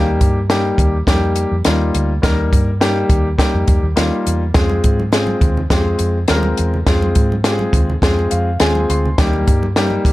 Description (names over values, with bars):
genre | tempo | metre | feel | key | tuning
uptempo 1960s-style soul | 104 BPM | 4/4 | straight | unclear | A4 = 439 Hz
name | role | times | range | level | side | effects
warm upright piano | accompaniment | 0.0-10.1 s | G3 to C6 | -18 LUFS | left 1 dB | none
vintage muted fingered electric bass | bass | 0.0-10.1 s | Db2 to Ab2 | -18 LUFS | equal | none
compact cocktail drum kit | drums | 0.2-10.1 s | hi-hat, kick drum, snare drum | -16 LUFS | equal | none
congas | percussion | 4.6-10.1 s | none | -28 LUFS | right 2 dB | none
room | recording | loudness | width
small room ambience | dark, warm production | -13 LUFS | side -17 dB against mid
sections
0.0-10.1 A section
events
upright piano fill 8.0-9.2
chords
0.0 Eb; 4.6 Fm; 9.2 Eb